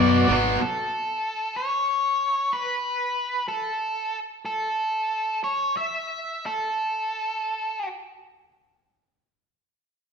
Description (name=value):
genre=post-rock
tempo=49-62 BPM (dotted quarters)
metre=6/8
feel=straight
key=unclear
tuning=A4 = 439 Hz
part: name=octave-fuzz lead guitar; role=melody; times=0.0-7.9 s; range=A4 to E5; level=-25 LUFS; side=equal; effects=distortion
part: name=overdriven electric guitar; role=riff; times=0.0-0.6 s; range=B2 to B3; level=-20 LUFS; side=left 2 dB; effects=none
part: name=picked electric bass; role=bass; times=0.0-0.6 s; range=G#1 to F#2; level=-25 LUFS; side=equal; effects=none
room=wet stone room reverb, RT60 1.3 s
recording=band playing live in one room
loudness=-24 LUFS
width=side -6 dB against mid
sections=0.6-8.7 A section; 8.7-10.1 B section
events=slowing down 4.5-8.7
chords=0.0 Bm; 0.6 N.C.